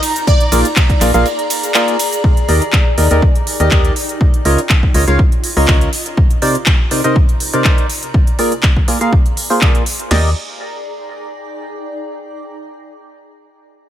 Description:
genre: piano house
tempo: 122 BPM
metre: 4/4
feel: swing 53% on 16ths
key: Eb major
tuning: A4 = 440 Hz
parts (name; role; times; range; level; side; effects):
- house drum kit; drums; 0.0-10.1 s; cabasa, handclaps, hi-hat, ride cymbal; -18 LUFS; equal; studio reverb
- granular cloud pad; texture; 0.0-12.0 s; C3 to Bb5; -24 LUFS; left 1 dB; built-in reverb, sidechain pumping
- plucky unison lead; melody; 0.3-0.7 s; D5; -23 LUFS; equal; lush chorus, digital delay
- punchy analog drum machine; drums; 0.3-10.2 s; crash cymbal, kick drum, snare drum; -13 LUFS; equal; studio reverb
- percussive organ stab; riff; 0.5-10.3 s; C3 to F5; -17 LUFS; right 1 dB; lush chorus, sidechain pumping, digital delay
- organ-like FM bass; bass; 0.5-5.9, 10.1-10.3 s; Bb1 to Eb2; -14 LUFS; equal; sidechain pumping
room: light reverb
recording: none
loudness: -11 LUFS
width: side -11 dB against mid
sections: 0.0-2.2 A section; 2.2-10.1 B section; 10.1-12.1 C section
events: drop 0.0-2.2; break 1.3-2.2; fade-out on ambient pad 2.2-10.1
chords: 0.0 Bb7; 2.2 Ebmaj7; 4.0 Db69; 6.2 Cm9; 7.9 Bb7; 10.1 Ebmaj7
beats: | 0.27 0.77 1.26 1.75 | 2.24 2.73 3.22 3.72 | 4.21 4.70 5.19 5.68 | 6.17 6.67 7.16 7.65 | 8.14 8.63 9.12 9.62 | 10.11 10.60 11.09 11.58

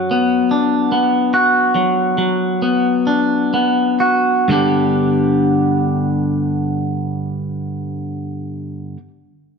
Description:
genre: rock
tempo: 40-50 BPM (dotted quarters)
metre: 6/8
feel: straight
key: G major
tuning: A4 = 439 Hz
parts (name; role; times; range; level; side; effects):
- clean electric guitar; arpeggios; 0.0-9.0 s; F#2 to G4; -15 LUFS; equal; slapback echo
room: moderate scoring stage reverb, RT60 1.8 s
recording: dark, warm production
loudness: -14 LUFS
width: side -5 dB against mid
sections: 0.0-4.5 A section; 4.5-7.5 B section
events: slowing down 0.0-4.5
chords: 0.0 Bm/F#; 4.5 G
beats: 0.51 | 1.75 3.07 | 4.49 5.98

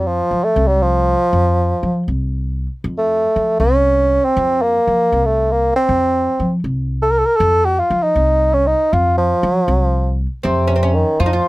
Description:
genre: Persian modal ensemble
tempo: 79 BPM (dotted quarters)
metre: 6/8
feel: straight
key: F dastgah homayun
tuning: A4 = 441 Hz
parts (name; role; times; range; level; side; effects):
- warm bassoon; melody; 0.0-11.5 s; C3 to Bb4; -15 LUFS; equal; none
- upright bass; bass; 0.0-11.4 s; C2 to F3; -18 LUFS; equal; none
- oud; second line; 10.4-11.5 s; C4 to F4; -22 LUFS; equal; none
room: little or no reverb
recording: none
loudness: -14 LUFS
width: side -19 dB against mid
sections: 0.0-10.4 A section; 10.4-11.5 B section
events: none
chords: none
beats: 0.56 | 1.32 2.08 | 2.85 3.60 | 4.37 5.12 | 5.88 6.64 | 7.40 8.16 | 8.92 9.68 | 10.44 11.20

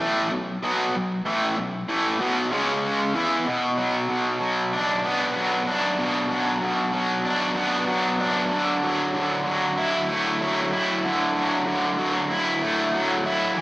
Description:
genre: rock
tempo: 95 BPM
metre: 4/4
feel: straight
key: B minor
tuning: A4 = 440 Hz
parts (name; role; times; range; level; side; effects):
- cranked stack guitar; solo; 0.0-13.6 s; A2 to E4; -21 LUFS; equal; overdrive, harmonic tremolo, slapback echo
room: wet lush hall reverb, RT60 1.9 s, digital ambience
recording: big arena sound, small speaker sound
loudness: -21 LUFS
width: side -19 dB against mid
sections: 0.0-3.5 A section; 3.5-13.6 B section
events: none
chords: 0.0 B5; 2.5 C#5; 3.1 E5; 3.5 Bm; 8.5 Dadd9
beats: 0.31 | 0.94 1.57 2.20 2.83 | 3.46 4.09 4.72 5.36 | 5.99 6.62 7.25 7.88 | 8.52 9.15 9.78 10.41 | 11.05 11.68 12.31 12.94 | 13.57

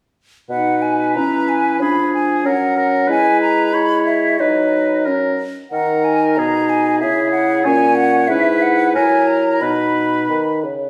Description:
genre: quick classical-period movement for symphony orchestra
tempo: 92 BPM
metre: 2/4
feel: straight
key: B major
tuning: A4 = 440 Hz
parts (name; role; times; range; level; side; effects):
- bright clarinet; second line; 0.5-10.6 s; C#4 to E4; -22 LUFS; equal; none
- mellow hollow silver concert flute; second line; 0.5-10.6 s; D#5 to Cb6; -21 LUFS; equal; none
- warm oboe; second line; 0.5-10.7 s; G#4 to C#5; -25 LUFS; equal; none
- mellow bassoon; accompaniment; 0.5-10.9 s; G#2 to G#3; -22 LUFS; equal; none
room: wet stone room reverb, RT60 1.2 s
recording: heard from further back in the room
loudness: -16 LUFS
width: mono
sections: 0.5-10.9 A section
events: none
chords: 0.5 B; 1.2 C#m/E; 1.8 Fdim7; 2.5 F#; 3.1 E/G#; 4.4 B/F#; 5.7 D#m; 6.4 G#m/B; 7.0 C#m; 7.7 F#/A#; 8.3 E/G#; 8.9 F#9; 9.6 B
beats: | 0.51 1.17 | 1.81 2.46 | 3.10 3.74 | 4.39 5.06 | 5.72 6.38 | 7.02 7.66 | 8.30 8.95 | 9.62 10.30

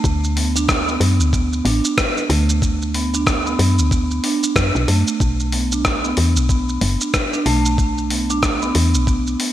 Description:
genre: organic downtempo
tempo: 93 BPM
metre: 4/4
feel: swing 60% on 16ths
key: unclear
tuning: A4 = 443 Hz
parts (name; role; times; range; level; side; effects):
- marimba with soft mallets; arpeggios; 0.0-9.5 s; A3 to D4; -21 LUFS; right 2 dB; digital delay
- woody FM bass; bass; 0.0-9.4 s; F#1 to F#2; -19 LUFS; left 1 dB; sidechain pumping
- dusty soul sampler-style drum kit; drums; 0.0-9.5 s; hi-hat, rim click, shaker; -22 LUFS; equal; gated reverb
- electronic kick drum; drums; 0.0-9.2 s; none; -21 LUFS; left 1 dB; none
room: light reverb, digital ambience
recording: bright 1980s-style digital production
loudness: -15 LUFS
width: side -12 dB against mid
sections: 0.0-9.5 A section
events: none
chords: 0.0 D; 5.2 Bm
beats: | 0.04 0.69 1.33 1.98 | 2.62 3.27 3.91 4.56 | 5.20 5.85 6.49 7.14 | 7.78 8.43 9.07

